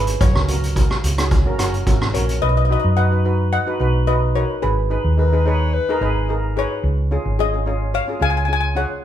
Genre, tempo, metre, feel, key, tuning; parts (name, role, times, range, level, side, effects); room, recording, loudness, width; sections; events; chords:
calypso; 109 BPM; 4/4; straight; B major; A4 = 441 Hz
steel pan; melody; 0.0-9.0 s; G#4 to G#5; -22 LUFS; left 3 dB
steel pan; accompaniment; 0.0-9.0 s; C#4 to F#5; -24 LUFS; equal
hollow-body short-scale fingered electric bass; bass; 0.0-8.8 s; F#1 to F#2; -19 LUFS; equal
street-band drum kit; drums; 0.1-2.4 s; hi-hat, kick drum, rim click; -19 LUFS; equal
warm alto saxophone; second line; 5.2-6.4 s; G#4 to C#5; -24 LUFS; left 3 dB
moderate large studio reverb, RT60 1.1 s; band playing live in one room, faint mains hum; -16 LUFS; side -10 dB against mid
0.0-2.4 A section; 2.4-9.0 B section
steel pan fill 1.3-2.4
0.2 F#; 2.4 B; 4.6 G#m; 6.8 C#